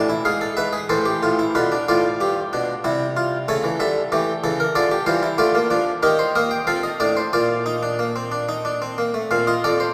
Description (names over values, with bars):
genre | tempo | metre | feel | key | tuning
classical, baroque-style 4-part fugue for harpsichord | 93 BPM | 3/4 | straight | Bb major from 5.4 s | A4 = 440 Hz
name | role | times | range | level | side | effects
harpsichord | solo | 0.0-9.9 s | F2 to A5 | -21 LUFS | equal | none
room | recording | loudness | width
wet church reverb, RT60 3.8 s | recorded in a church or concert hall | -21 LUFS | mono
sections
0.0-1.6 A section; 1.6-9.3 B section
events
none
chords
0.0 E; 0.9 Am; 1.6 G7; 2.8 C; 3.5 A7/C#; 4.8 Dm; 5.4 Bb/D; 6.0 Cm7/Eb; 6.7 F7; 7.3 Bb